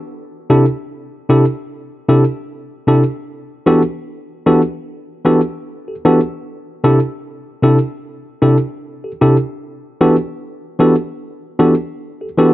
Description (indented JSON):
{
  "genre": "reggae",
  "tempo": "76 BPM",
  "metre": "4/4",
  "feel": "swing 57% on 16ths",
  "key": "E minor",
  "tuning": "A4 = 440 Hz",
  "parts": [
    { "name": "tine electric piano", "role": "solo", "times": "0.5-12.5 s", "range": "C3 to A4", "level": "-13 LUFS", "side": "equal", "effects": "none" }
  ],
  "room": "light reverb",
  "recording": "dry, close 1970s-style studio recording",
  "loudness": "-13 LUFS",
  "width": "side -15 dB against mid",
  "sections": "0.0-12.5 A section",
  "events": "none",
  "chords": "0.1 C69; 3.3 Em11; 6.4 C69; 9.6 Em11"
}